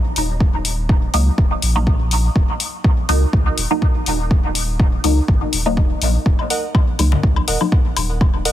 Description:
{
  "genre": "dub techno",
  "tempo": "123 BPM",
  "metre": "4/4",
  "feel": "swing 54% on 16ths",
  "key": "Eb minor",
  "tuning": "A4 = 435 Hz",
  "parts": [
    { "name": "warm sub bass", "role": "bass", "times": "0.2-8.5 s", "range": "Eb1 to Db2", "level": "-19 LUFS", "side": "equal", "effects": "sidechain pumping" },
    { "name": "electronic hi-hat", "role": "drums", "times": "0.2-8.5 s", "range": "none", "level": "-23 LUFS", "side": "left 5 dB", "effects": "none" },
    { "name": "electronic kick drum", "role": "drums", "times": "0.4-8.3 s", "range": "none", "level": "-16 LUFS", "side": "equal", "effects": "overdrive" },
    { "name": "filtered dub chord stab", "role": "stabs", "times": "1.1-7.8 s", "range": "Gb3 to Eb4", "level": "-23 LUFS", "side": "left 1 dB", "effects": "chorus, phaser, sidechain pumping, dub echo" },
    { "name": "woodblock and congas", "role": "percussion", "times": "6.4-8.3 s", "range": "none", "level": "-26 LUFS", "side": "left 6 dB", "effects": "overdrive, sidechain pumping on perc, dub echo" },
    { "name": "wavetable chord stab", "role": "riff", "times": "6.5-8.5 s", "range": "Bb4 to Gb5", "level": "-25 LUFS", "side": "right 4 dB", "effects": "sidechain pumping, dub echo" }
  ],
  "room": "little or no reverb",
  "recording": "dense, heavily limited modern master",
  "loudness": "-15 LUFS",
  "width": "side -12 dB against mid",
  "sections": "0.0-8.5 A section",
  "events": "none",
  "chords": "0.0 Ebm",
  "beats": "| 0.41 0.89 1.38 1.87 | 2.36 2.84 3.33 3.82 | 4.31 4.79 5.28 5.77 | 6.26 6.75 7.23 7.72 | 8.21"
}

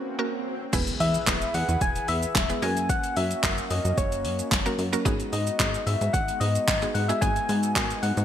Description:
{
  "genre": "dance-pop",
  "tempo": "111 BPM",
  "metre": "4/4",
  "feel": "straight",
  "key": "unclear",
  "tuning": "A4 = 440 Hz",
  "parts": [
    { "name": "warm analog pad", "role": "sustained chords", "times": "0.0-8.2 s", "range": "E3 to B4", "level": "-36 LUFS", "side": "left 1 dB", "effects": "chorus, sidechain pumping" },
    { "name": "swell and impact", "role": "sound effects", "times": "0.0-2.9 s", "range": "none", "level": "-38 LUFS", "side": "right 1 dB", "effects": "none" },
    { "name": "mallet-like synth pluck", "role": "accompaniment", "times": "0.2-8.2 s", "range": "F#3 to B4", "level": "-31 LUFS", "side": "right 2 dB", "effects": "chorus, sidechain pumping" },
    { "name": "plucky analog bass", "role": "bass", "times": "0.7-8.2 s", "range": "E1 to G#2", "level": "-28 LUFS", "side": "equal", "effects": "sidechain pumping" },
    { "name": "deep house drum kit", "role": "drums", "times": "0.7-8.2 s", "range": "crash cymbal, handclaps, hi-hat, kick drum, shaker, snare drum", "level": "-27 LUFS", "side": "equal", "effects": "overdrive, gated reverb" },
    { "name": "soft struck synth lead", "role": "melody", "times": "1.0-8.2 s", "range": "C#5 to G#5", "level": "-28 LUFS", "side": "left 2 dB", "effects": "chorus, ping-pong delay" }
  ],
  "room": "moderate plate reverb, RT60 2.6 s",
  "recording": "bright 1980s-style digital production",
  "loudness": "-23 LUFS",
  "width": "side -10 dB against mid",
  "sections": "0.7-8.2 A section",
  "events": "break 0.0-0.7; swell 0.0-0.7; impact 0.7-2.9",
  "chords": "0.0 F#; 0.7 E; 2.6 F#; 5.1 G#m7",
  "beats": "0.19 | 0.73 1.27 1.81 2.35 | 2.89 3.43 3.98 4.51 | 5.06 5.60 6.14 6.68 | 7.22 7.76"
}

